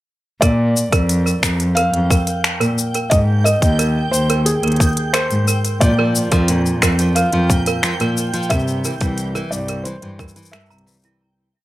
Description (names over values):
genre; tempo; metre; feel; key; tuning
folktronica; 89 BPM; 4/4; straight; Bb lydian; A4 = 440 Hz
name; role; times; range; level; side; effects
felt-muted upright piano; melody; 0.4-11.0 s; Ab4 to F5; -22 LUFS; equal; vintage 12-bit sampler grit, tape echo
toy piano; second line; 0.4-11.2 s; E4 to Bb5; -25 LUFS; right 5 dB; tape echo
dark cello; bass; 0.4-11.2 s; C2 to C3; -18 LUFS; equal; none
electronic kick drum; drums; 0.4-10.3 s; none; -17 LUFS; equal; overdrive
organic electronic drum kit; drums; 0.4-11.2 s; finger snaps, hi-hat, shaker; -21 LUFS; left 1 dB; overdrive
backwards swelling texture; texture; 1.7-11.2 s; G5; -29 LUFS; right 2 dB; built-in reverb
nylon-string guitar; arpeggios; 5.8-11.2 s; G2 to F3; -24 LUFS; equal; vintage 12-bit sampler grit, tape echo
room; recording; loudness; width
light reverb; none; -14 LUFS; side -16 dB against mid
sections
0.4-11.2 groove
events
fade-out 7.6-11.2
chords
0.4 Bb; 3.1 Ab; 5.8 Bb; 8.5 C